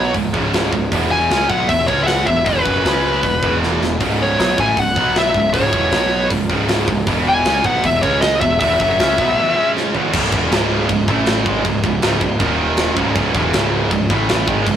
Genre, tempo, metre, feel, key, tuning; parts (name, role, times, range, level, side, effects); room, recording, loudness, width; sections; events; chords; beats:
heavy metal; 157 BPM; 4/4; straight; C# minor; A4 = 440 Hz
high-gain lead guitar; melody; 0.0-9.7 s; B4 to G#5; -16 LUFS; left 2 dB; distortion
heavy high-gain guitar; riff; 0.0-14.8 s; C#2 to C#4; -26 LUFS; left 6 dB; distortion
heavy high-gain guitar; riff; 0.0-14.8 s; C#2 to C#4; -21 LUFS; right 6 dB; distortion
heavy high-gain guitar; riff; 0.0-14.8 s; C#2 to C#4; -25 LUFS; equal; distortion
fuzz picked electric bass; bass; 0.0-14.8 s; C#1 to C#2; -22 LUFS; equal; overdrive
tight metal drum kit; drums; 0.1-14.8 s; crash cymbal, hi-hat, kick drum, snare drum, toms; -20 LUFS; equal
moderate studio ambience, RT60 0.5 s; rough rehearsal-room recording; -14 LUFS; side -9 dB against mid
0.0-10.1 A section; 10.1-14.8 B section
drum fill 3.6-4.0, 9.8-10.1
0.2 C#5; 0.9 E5; 1.9 C#5; 2.3 E5; 2.8 C#5; 3.2 E5; 4.0 C#m; 5.0 B5; 5.3 C#m; 5.9 B5; 6.3 C#5; 7.1 E5; 8.0 C#5; 8.4 E5; 9.6 C#5; 9.9 E5; 10.1 C#m; 11.1 A5; 11.5 C#5; 12.4 D#5; 13.0 C#m; 14.1 A5
0.15 0.54 | 0.92 1.31 1.69 2.08 | 2.46 2.85 3.23 3.62 | 4.00 4.39 4.77 5.16 | 5.54 5.92 6.31 6.69 | 7.08 7.46 7.84 8.22 | 8.61 8.99 9.37 9.75 | 10.13 10.51 10.89 11.27 | 11.65 12.03 12.40 12.78 | 13.16 13.53 13.91 14.29 | 14.66